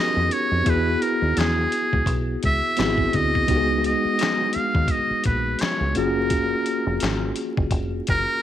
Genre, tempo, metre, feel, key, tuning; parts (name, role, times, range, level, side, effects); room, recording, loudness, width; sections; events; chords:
R&B, neo-soul; 85 BPM; 4/4; swing 57% on 16ths; F# major; A4 = 439 Hz
trumpet with metal mute; melody; 0.0-8.4 s; G#4 to E#5; -23 LUFS; equal
mellow tine electric piano; accompaniment; 0.0-8.4 s; G#3 to G#4; -25 LUFS; equal; medium stereo tremolo
deep dub fingered electric bass; bass; 0.2-8.2 s; E#1 to E#2; -25 LUFS; equal
dusty soul sampler-style drum kit; drums; 0.3-8.3 s; handclaps, hi-hat, kick drum, snare drum; -26 LUFS; left 1 dB
light reverb; 1960s-style stereo, vinyl crackle; -19 LUFS; side -11 dB against mid
0.0-8.4 A section
0.0 Bmaj9; 0.7 E; 2.8 G#7alt; 3.5 C#13sus4; 6.0 F#maj9